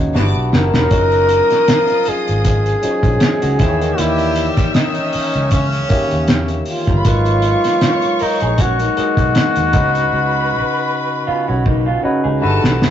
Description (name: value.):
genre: lush 1970s-style soul.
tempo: 78 BPM.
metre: 4/4.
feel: swing 54% on 16ths.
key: unclear.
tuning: A4 = 440 Hz.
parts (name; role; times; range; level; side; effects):
barky tine electric piano; accompaniment; 0.0-12.9 s; C#3 to A5; -22 LUFS; left 1 dB; overdrive.
vintage muted fingered electric bass; bass; 0.0-12.9 s; E1 to E2; -19 LUFS; equal; none.
rich studio violin section; second line; 0.1-12.8 s; G4 to E6; -26 LUFS; equal; none.
cloth-damped thuddy drum kit; drums; 0.2-12.9 s; hi-hat, kick drum, snare drum; -17 LUFS; equal; none.
breathy flugelhorn; melody; 0.6-12.4 s; C#4 to A#4; -17 LUFS; left 1 dB; none.
clear horn section; stabs; 0.9-6.6 s; C#3 to G4; -24 LUFS; left 1 dB; none.
electric guitar through a small old amp; riff; 3.2-12.6 s; A#3 to A#4; -21 LUFS; equal; none.
room: wet booth ambience, RT60 0.2 s.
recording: rough rehearsal-room recording, tube saturation, nothing above 7.8 kHz.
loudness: -13 LUFS.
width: side -10 dB against mid.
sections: 0.0-12.9 A section.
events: drum fill 0.1-0.9, 10.1-12.9.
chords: 0.1 Gmaj13; 0.9 F#maj13; 3.6 D#7b9; 7.1 G#m7; 9.7 C#7sus4.